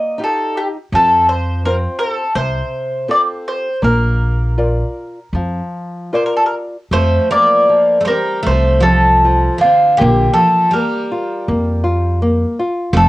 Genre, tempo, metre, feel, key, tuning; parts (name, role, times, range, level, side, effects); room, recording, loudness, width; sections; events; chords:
fado-style ballad; 75-85 BPM; 4/4; rubato; Bb major, F major from 6.9 s; A4 = 440 Hz
mandolin; melody; 0.0-13.1 s; F4 to Eb5; -14 LUFS; equal; cassette tape
nylon-string guitar; accompaniment; 0.0-13.1 s; C3 to D5; -21 LUFS; left 1 dB
upright bass; bass; 0.9-13.1 s; F1 to F2; -16 LUFS; equal
picked twelve-string acoustic guitar; second line; 6.9-13.1 s; D3 to Bb3; -20 LUFS; right 2 dB
light reverb; home recording on cassette; -12 LUFS; side -17 dB against mid
0.0-6.9 A section; 6.9-13.1 B section
0.0 Ebadd9; 0.9 F; 3.8 Bb; 6.9 F6; 10.0 Bb5